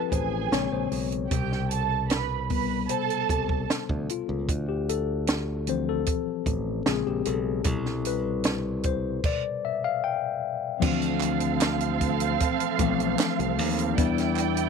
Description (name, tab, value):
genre	lush 1970s-style soul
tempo	76 BPM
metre	4/4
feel	straight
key	D dorian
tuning	A4 = 439 Hz
part	muted studio string section	second line	0.0-3.7, 10.8-14.7 s	C4 to B5	-29 LUFS	right 17 dB	slapback echo
part	mellow tine electric piano	accompaniment	0.0-14.7 s	B2 to G5	-28 LUFS	left 11 dB	medium stereo tremolo
part	modern bright fingered electric bass	bass	0.1-14.7 s	A1 to E2	-30 LUFS	right 2 dB	none
part	compact cocktail drum kit	drums	0.1-14.7 s	crash cymbal, hi-hat, kick drum, snare drum	-28 LUFS	right 2 dB	none
part	group handclap	percussion	11.2-14.6 s	none	-34 LUFS	right 16 dB	none
room	light reverb, small room ambience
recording	1960s-style stereo with parts hard left and right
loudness	-24 LUFS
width	side -5 dB against mid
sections	0.0-10.8 A section; 10.8-14.7 B section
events	tine electric piano solo 0.0-10.8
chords	0.0 Dm7 (rootless); 0.5 Bbm9; 1.3 Am9/C; 4.5 Dm7; 6.9 Bbm9; 7.7 Cmaj13; 10.8 Dm9; 14.0 Em7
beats	0.52 | 1.31 2.11 2.90 3.69 | 4.49 5.28 6.07 6.86 | 7.66 8.45 9.24 10.03 | 10.82 11.61 12.40 13.19 | 13.98